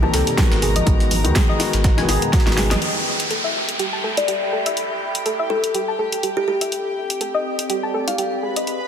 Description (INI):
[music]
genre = deep house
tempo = 123 BPM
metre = 4/4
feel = swing 56% on 16ths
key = unclear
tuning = A4 = 440 Hz
[part]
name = soft round pluck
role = arpeggios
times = 0.0-8.6 s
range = F#4 to A5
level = -26 LUFS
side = equal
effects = chorus, sidechain pumping, dub echo
[part]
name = felt-muted upright piano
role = stabs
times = 0.0-2.8 s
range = Eb3 to G#4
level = -24 LUFS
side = left 4 dB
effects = vintage 12-bit sampler grit, sidechain pumping, digital delay
[part]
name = warm sub bass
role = bass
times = 0.0-2.8 s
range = G#1 to D#2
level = -21 LUFS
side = equal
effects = sidechain pumping
[part]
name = congas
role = percussion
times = 0.0-2.8 s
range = none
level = -30 LUFS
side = right 2 dB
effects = none
[part]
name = warbly tape-like pad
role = texture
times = 0.0-8.9 s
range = C4 to B5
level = -30 LUFS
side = right 1 dB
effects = chorus, built-in reverb, sidechain pumping
[part]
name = warm studio violin section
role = texture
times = 0.0-8.9 s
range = G4 to B5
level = -30 LUFS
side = equal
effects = sidechain pumping
[part]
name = breakbeat sampler-style drum kit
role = drums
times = 0.1-2.8 s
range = hi-hat, snare drum, tambourine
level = -29 LUFS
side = right 1 dB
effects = overdrive, high-pass filter on perc, small room ambience, high-pass filter on hats, high-pass filter on snare, high-pass filter on room
[part]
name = deep house drum kit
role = drums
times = 0.1-8.8 s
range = hi-hat, snare drum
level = -24 LUFS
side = equal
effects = small room ambience
[part]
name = electronic kick drum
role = drums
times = 0.4-2.4 s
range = none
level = -18 LUFS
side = equal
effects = small room ambience
[part]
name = downlifter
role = sound effects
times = 2.8-6.7 s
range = none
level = -26 LUFS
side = right 1 dB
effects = none
[part]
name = kalimba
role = melody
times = 4.2-8.5 s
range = G4 to F5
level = -24 LUFS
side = left 2 dB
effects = digital delay
[sound]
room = moderate lush hall reverb, RT60 2.0 s, digital ambience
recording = dense, heavily limited modern master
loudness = -17 LUFS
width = side -8 dB against mid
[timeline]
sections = 0.0-2.8 A section; 2.8-8.9 B section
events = drum fill 2.3-2.8; band accent 2.7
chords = 0.0 Cm7; 0.6 G#m7; 2.8 A5; 6.7 Cm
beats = 0.38 | 0.87 1.35 1.84 2.33 | 2.82 3.31 3.79 4.28 | 4.77 5.26 5.75 6.23 | 6.72 7.21 7.70 8.19 | 8.67